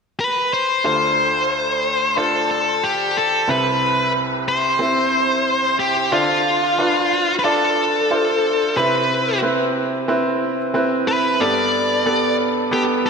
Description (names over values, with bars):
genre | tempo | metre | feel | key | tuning
pop | 91 BPM | 4/4 | swing 56% on 16ths | unclear | A4 = 442 Hz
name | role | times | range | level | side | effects
high-gain lead guitar | melody | 0.2-13.1 s | F4 to D5 | -18 LUFS | left 1 dB | distortion, tape echo
bright upright piano | accompaniment | 0.8-13.1 s | C2 to D5 | -20 LUFS | right 1 dB | none
room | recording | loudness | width
wet lush hall reverb, RT60 2.9 s | dreamy mix soaked in reverb | -16 LUFS | side -5 dB against mid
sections
0.8-6.1 A section; 6.1-13.1 B section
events
none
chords
0.0 N.C.; 0.8 Dm7; 3.5 Cmaj7; 6.1 Dm7; 8.8 Cmaj7; 11.4 Gadd9